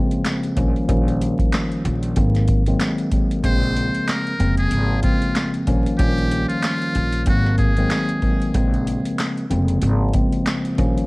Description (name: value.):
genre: hip hop, boom-bap hip-hop.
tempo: 94 BPM.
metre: 4/4.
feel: swing 59% on 16ths.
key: Bb minor.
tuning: A4 = 440 Hz.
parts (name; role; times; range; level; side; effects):
mellow tine electric piano; accompaniment; 0.0-11.1 s; Db3 to Db4; -21 LUFS; left 1 dB; medium stereo tremolo, cassette tape.
booming analog drum machine; drums; 0.1-11.1 s; handclaps, hi-hat, kick drum, snare drum; -22 LUFS; equal; none.
upright bass; bass; 0.6-10.9 s; F1 to Bb1; -22 LUFS; equal; none.
trumpet with metal mute; melody; 3.4-8.5 s; F4 to C5; -26 LUFS; equal; ping-pong delay.
room: small room ambience.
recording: worn, warbling old tape, cassette tape, vinyl crackle, warbly pitch drift.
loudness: -17 LUFS.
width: side -25 dB against mid.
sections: 0.0-11.1 A section.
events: none.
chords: 0.0 Bbm9; 0.6 Eb9/Bb; 2.2 Ab9; 3.4 Bbm9; 5.7 Eb9/Bb; 7.3 Ab9; 8.5 Bbm9.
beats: 0.25 | 0.89 1.52 2.16 2.80 | 3.44 4.08 4.72 5.36 | 5.99 6.63 7.27 7.91 | 8.55 9.19 9.82 10.46.